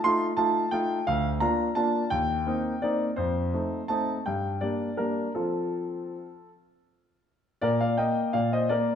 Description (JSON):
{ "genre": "classical-period piano sonatina", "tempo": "52-59 BPM (dotted quarters)", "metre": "6/8", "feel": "rubato", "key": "Bb major", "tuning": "A4 = 440 Hz", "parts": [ { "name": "clear concert grand piano", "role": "solo", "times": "0.0-9.0 s", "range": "D2 to C6", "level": "-24 LUFS", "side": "equal", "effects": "none" } ], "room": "moderate recital hall reverb, RT60 1.4 s", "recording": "minimal, uncompressed stereo recording", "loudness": "-25 LUFS", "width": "side -8 dB against mid", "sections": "0.0-7.6 A section; 7.6-9.0 B section", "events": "none", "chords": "0.0 F7; 1.1 Bb/D; 2.1 Cm7/Eb; 3.2 F7; 4.2 Gm; 5.4 F; 7.6 Bb" }